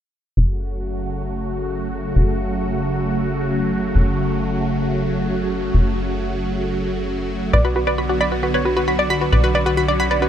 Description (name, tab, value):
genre	trance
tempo	134 BPM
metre	4/4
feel	straight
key	F# minor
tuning	A4 = 442 Hz
part	supersaw pad	sustained chords	0.5-10.3 s	C#3 to F#4	-22 LUFS	equal	phaser, low-pass filter
part	tight sequencer bass	bass	0.4-10.3 s	F#1 to B1	-22 LUFS	equal	tube saturation
part	wide unison pluck	melody	7.5-10.3 s	F#4 to D5	-19 LUFS	equal	tape echo
part	analog pluck	arpeggios	7.5-10.3 s	B4 to B5	-23 LUFS	left 1 dB	chorus, tape echo
room	light reverb, digital ambience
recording	none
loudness	-18 LUFS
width	side -10 dB against mid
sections	0.4-10.3 A section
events	filter sweep on supersaw synth 0.4-10.3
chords	0.4 F#m; 7.5 Bm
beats	| 0.37 0.82 1.27 1.71 | 2.16 2.61 3.06 3.50 | 3.95 4.40 4.85 5.30 | 5.74 6.19 6.64 7.09 | 7.54 7.98 8.43 8.88 | 9.33 9.77 10.22